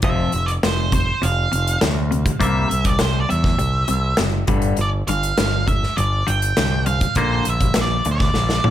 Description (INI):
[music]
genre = quiet-loud alternative rock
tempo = 101 BPM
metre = 4/4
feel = straight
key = G dorian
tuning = A4 = 440 Hz
[part]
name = octave-fuzz lead guitar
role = melody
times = 0.0-8.7 s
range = C5 to G5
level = -23 LUFS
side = right 2 dB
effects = distortion
[part]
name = twangy electric guitar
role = arpeggios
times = 0.0-8.7 s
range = F2 to Bb3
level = -25 LUFS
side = left 3 dB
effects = phaser
[part]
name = growling picked electric bass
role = bass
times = 0.0-8.7 s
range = F1 to E2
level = -21 LUFS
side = equal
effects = overdrive
[part]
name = big rock drum kit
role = drums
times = 0.0-8.7 s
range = hi-hat, kick drum, snare drum, toms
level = -21 LUFS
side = equal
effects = none
[sound]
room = studio ambience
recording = none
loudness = -17 LUFS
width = side -11 dB against mid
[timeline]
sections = 0.0-8.7 A section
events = drum fill 8.4-8.7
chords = 0.0 F5; 2.4 C7; 4.5 G5; 7.2 Bb